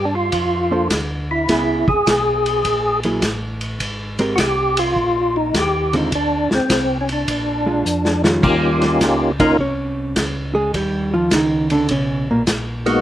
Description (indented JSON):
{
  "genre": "soul jazz organ trio",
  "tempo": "104 BPM",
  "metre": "4/4",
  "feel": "swing 67% on 8ths",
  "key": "Eb mixolydian from 8.4 s",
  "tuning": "A4 = 439 Hz",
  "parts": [
    { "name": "percussive tonewheel organ", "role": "melody", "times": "0.0-13.0 s", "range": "Ab3 to Bb4", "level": "-17 LUFS", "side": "equal", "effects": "slow rotary speaker, overdrive, chorus vibrato" },
    { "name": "tonewheel organ", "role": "bass", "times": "0.0-13.0 s", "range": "Ab1 to G2", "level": "-25 LUFS", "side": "equal", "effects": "chorus vibrato" },
    { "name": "vintage drum kit", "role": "drums", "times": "0.3-13.0 s", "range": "crash cymbal, hi-hat, kick drum, ride cymbal, snare drum", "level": "-22 LUFS", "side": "equal", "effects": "none" },
    { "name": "hollow-body jazz guitar", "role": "accompaniment", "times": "0.7-12.4 s", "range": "Bb2 to Eb5", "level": "-18 LUFS", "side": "right 1 dB", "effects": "none" }
  ],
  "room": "little or no reverb",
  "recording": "none",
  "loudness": "-16 LUFS",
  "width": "side -12 dB against mid",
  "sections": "0.0-8.4 A section; 8.4-13.0 B section",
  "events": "drum fill 7.9-8.4; hollow-body jazz guitar solo 8.4-13.0",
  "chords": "0.0 Bb (rootless); 1.5 Dbm7; 2.7 F#9; 3.8 Abmaj9; 6.1 Csus2; 7.3 Bb7; 8.4 Eb9; 10.7 Eb7b13",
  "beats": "0.34 0.92 | 1.49 2.07 2.65 3.23 | 3.81 4.39 4.96 5.54 | 6.12 6.70 7.28 7.86 | 8.43 9.01 9.59 10.17 | 10.75 11.32 11.90 12.48"
}